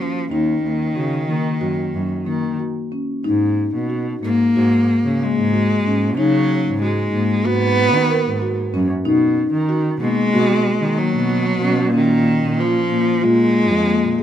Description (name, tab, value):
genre	contemporary instrumental, chamber music in an uneven meter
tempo	186 BPM (eighths)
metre	9/8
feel	straight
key	unclear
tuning	A4 = 441 Hz
part	rich cello	melody	0.0-14.2 s	Eb3 to Cb4	-20 LUFS	right 1 dB	none
part	marimba with soft mallets	arpeggios	0.0-14.2 s	Bb3 to Bb4	-20 LUFS	left 2 dB	none
part	dark cello	bass	0.3-14.2 s	Eb2 to Eb3	-21 LUFS	right 1 dB	none
room	light reverb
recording	minimal, uncompressed stereo recording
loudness	-16 LUFS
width	side -10 dB against mid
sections	0.0-3.3 A section; 3.3-14.2 B section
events	none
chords	0.0 Ebm7; 3.3 Abm9; 9.1 Bmaj7; 11.9 Bbm7